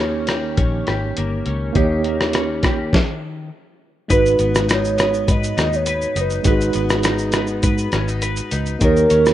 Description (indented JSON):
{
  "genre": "indie pop, bedroom pop",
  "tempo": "102 BPM",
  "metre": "4/4",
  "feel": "straight",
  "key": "G# minor",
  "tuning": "A4 = 440 Hz",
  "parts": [
    { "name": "tine electric piano", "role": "accompaniment", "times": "0.0-9.3 s", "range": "G#3 to C#5", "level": "-22 LUFS", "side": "right 3 dB", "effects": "medium stereo tremolo, cassette tape" },
    { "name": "twelve-string electric guitar", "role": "accompaniment", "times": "0.0-9.3 s", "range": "G#2 to B4", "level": "-27 LUFS", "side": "left 5 dB", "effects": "lush chorus, vibrato effect" },
    { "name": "vintage muted fingered electric bass", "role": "bass", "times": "0.0-9.3 s", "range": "F#1 to G#2", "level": "-23 LUFS", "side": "left 1 dB", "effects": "none" },
    { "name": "dusty soul sampler-style drum kit", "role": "drums", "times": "0.3-9.3 s", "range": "hi-hat, kick drum, rim click, shaker, snare drum", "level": "-20 LUFS", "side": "left 1 dB", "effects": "none" },
    { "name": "hollow clarinet-like synth lead", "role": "melody", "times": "4.1-9.3 s", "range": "G#4 to D#5", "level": "-20 LUFS", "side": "right 2 dB", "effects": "wide subtle chorus" }
  ],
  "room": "light reverb",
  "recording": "rough home demo mix, nothing above 11.0 kHz",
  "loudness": "-16 LUFS",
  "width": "side -12 dB against mid",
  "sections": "0.0-4.1 A section; 4.1-9.3 B section",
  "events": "stop 2.9-4.1",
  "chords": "0.0 D#7; 4.1 G#m7; 8.8 D#7",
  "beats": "0.58 1.17 | 1.75 2.34 2.93 3.52 | 4.11 4.70 5.28 5.87 | 6.46 7.05 7.64 8.22 | 8.81"
}